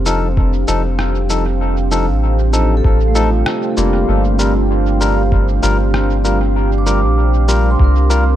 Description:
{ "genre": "ambient dub", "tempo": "97 BPM", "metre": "4/4", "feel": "swing 54% on 16ths", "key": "G minor", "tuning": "A4 = 440 Hz", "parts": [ { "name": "deep dark ambient pad", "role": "sustained chords", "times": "0.0-8.4 s", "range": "C4 to F5", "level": "-20 LUFS", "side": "right 2 dB", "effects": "chorus, built-in reverb" }, { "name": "soft dub sub bass", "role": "bass", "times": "0.0-8.4 s", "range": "F1 to C2", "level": "-15 LUFS", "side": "equal", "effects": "none" }, { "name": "barky tine electric piano", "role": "stabs", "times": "0.1-8.2 s", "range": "F3 to Bb4", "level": "-20 LUFS", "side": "left 4 dB", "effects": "overdrive, dub echo" }, { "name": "electronic shaker and rim click", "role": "drums", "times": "0.1-8.2 s", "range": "none", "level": "-24 LUFS", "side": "equal", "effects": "small room ambience, dub echo" }, { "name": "electronic kick drum", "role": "drums", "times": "0.4-7.9 s", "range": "none", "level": "-16 LUFS", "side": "equal", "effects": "small room ambience" }, { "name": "vibraphone with soft mallets", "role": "arpeggios", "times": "2.8-8.4 s", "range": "A3 to D6", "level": "-24 LUFS", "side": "right 3 dB", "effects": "dub echo" } ], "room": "light reverb, digital ambience", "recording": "none", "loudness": "-12 LUFS", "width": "side -12 dB against mid", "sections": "0.0-8.4 A section", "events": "none", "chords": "0.0 F7; 4.1 Gm7" }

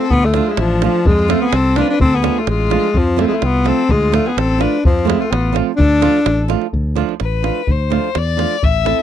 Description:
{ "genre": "balkan folk, Balkan wedding band", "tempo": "127 BPM", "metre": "2/4", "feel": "swing 53% on 16ths", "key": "D dorian sharp4", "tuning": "A4 = 440 Hz", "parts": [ { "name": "clear alto saxophone", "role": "melody", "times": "0.0-6.4 s", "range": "F3 to D4", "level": "-16 LUFS", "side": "left 2 dB", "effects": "none" }, { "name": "clear violin", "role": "second line", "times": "0.0-9.0 s", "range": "C4 to E5", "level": "-23 LUFS", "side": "left 11 dB", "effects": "none" }, { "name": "flamenco guitar", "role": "accompaniment", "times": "0.0-9.0 s", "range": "F3 to A4", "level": "-19 LUFS", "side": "right 17 dB", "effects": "none" }, { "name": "modern bright fingered electric bass", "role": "bass", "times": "0.1-8.9 s", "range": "A1 to F2", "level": "-18 LUFS", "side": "equal", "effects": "none" }, { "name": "davul", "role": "percussion", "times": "0.1-9.0 s", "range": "none", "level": "-18 LUFS", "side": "equal", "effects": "none" } ], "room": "little or no reverb", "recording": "dry, close 1970s-style studio recording", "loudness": "-13 LUFS", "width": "side -10 dB against mid", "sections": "0.0-6.7 A section; 6.7-9.0 B section", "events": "violin solo 6.7-9.0", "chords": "0.1 Dm; 1.1 F; 2.0 Dm; 3.0 F; 3.9 Dm; 4.8 F; 5.8 Dm" }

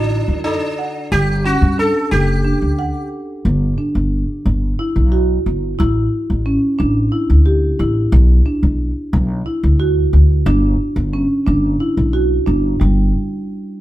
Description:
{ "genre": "progressive instrumental, band music in an uneven meter", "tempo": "180 BPM (eighths)", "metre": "7/8", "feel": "straight", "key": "G lydian", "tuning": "A4 = 439 Hz", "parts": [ { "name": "sitar", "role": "melody", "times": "0.0-3.1 s", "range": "D4 to A4", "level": "-20 LUFS", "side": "equal", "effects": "none" }, { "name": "marimba with medium mallets", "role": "arpeggios", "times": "0.0-13.1 s", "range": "G3 to F#5", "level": "-19 LUFS", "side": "right 1 dB", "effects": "none" }, { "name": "upright bass", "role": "bass", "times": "0.0-13.1 s", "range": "F#1 to G2", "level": "-15 LUFS", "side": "equal", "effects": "none" } ], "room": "light reverb", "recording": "band playing live in one room", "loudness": "-14 LUFS", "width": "side -15 dB against mid", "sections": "0.0-3.5 A section; 3.5-12.8 B section; 12.8-13.8 C section", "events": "none", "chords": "0.0 Bm7 (rootless); 1.1 G5; 3.5 Gmaj7; 5.8 Asus4; 8.1 Bm; 10.5 G; 12.8 N.C." }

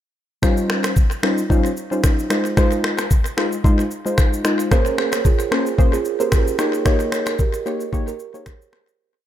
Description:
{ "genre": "afrobeats", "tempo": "112 BPM", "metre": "4/4", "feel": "swing 55% on 16ths", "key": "unclear", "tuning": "A4 = 437 Hz", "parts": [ { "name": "warm analog keys", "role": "accompaniment", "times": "0.4-8.5 s", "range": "G3 to Db5", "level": "-21 LUFS", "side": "left 1 dB", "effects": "chorus" }, { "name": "afro-pop drum kit", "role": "drums", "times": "0.4-9.0 s", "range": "finger snaps, kick drum, rim click, shaker", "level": "-18 LUFS", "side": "equal", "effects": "tape echo" }, { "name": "kalimba", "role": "riff", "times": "4.7-8.6 s", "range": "F4 to Eb5", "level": "-23 LUFS", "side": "right 8 dB", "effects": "tape echo" } ], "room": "little or no reverb", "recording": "echo-heavy mix", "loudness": "-16 LUFS", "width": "side -11 dB against mid", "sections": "0.4-9.0 verse", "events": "fade-out 6.9-9.0", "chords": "0.4 Dbmaj9#11; 2.3 Fm7; 4.7 Bbm9; 6.6 Eb7" }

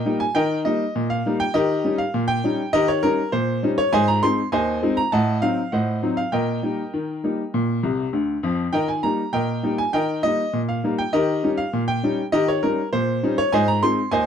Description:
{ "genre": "ragtime piano", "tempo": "100 BPM", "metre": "2/4", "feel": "straight", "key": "Eb major", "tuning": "A4 = 440 Hz", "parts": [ { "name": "bright upright piano", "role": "solo", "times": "0.0-14.3 s", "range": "C2 to C6", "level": "-19 LUFS", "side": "equal", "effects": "none" } ], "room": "light reverb", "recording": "dark, warm production", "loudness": "-19 LUFS", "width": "side -8 dB against mid", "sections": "0.0-14.3 A section", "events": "upright piano fill 7.8-8.7", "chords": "0.0 Eb; 1.5 Eb7; 3.9 Ab; 5.1 Adim7; 6.3 Eb/Bb; 7.5 Bb; 8.7 Eb; 11.1 Eb7; 13.5 Ab" }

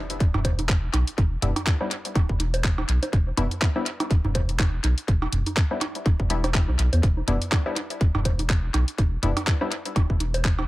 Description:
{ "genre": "minimal techno", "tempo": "123 BPM", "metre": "4/4", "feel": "swing 57% on 16ths", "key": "E minor", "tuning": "A4 = 438 Hz", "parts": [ { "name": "impact", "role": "sound effects", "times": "0.0-1.2 s", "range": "none", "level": "-42 LUFS", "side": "equal", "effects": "none" }, { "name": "garage drum kit", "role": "drums", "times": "0.1-10.6 s", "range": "handclaps, hi-hat", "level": "-29 LUFS", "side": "equal", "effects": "analog delay" }, { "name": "saturated sub bass", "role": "bass", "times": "0.2-10.6 s", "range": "D1 to E2", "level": "-25 LUFS", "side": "equal", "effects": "sidechain pumping" }, { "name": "electronic kick drum", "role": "drums", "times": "0.2-10.6 s", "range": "none", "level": "-21 LUFS", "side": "equal", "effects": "none" }, { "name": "electronic toms, cowbell and bongos", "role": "percussion", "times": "0.3-10.7 s", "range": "none", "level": "-29 LUFS", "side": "right 2 dB", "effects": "overdrive, analog delay" }, { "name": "filtered dub chord stab", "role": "stabs", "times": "1.4-9.7 s", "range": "G3 to E4", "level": "-32 LUFS", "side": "left 3 dB", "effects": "chorus, analog delay" } ], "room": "little or no reverb", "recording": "echo-heavy mix", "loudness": "-21 LUFS", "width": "side -18 dB against mid", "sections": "0.0-10.7 A section", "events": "impact 0.0-1.2", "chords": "0.0 Em7" }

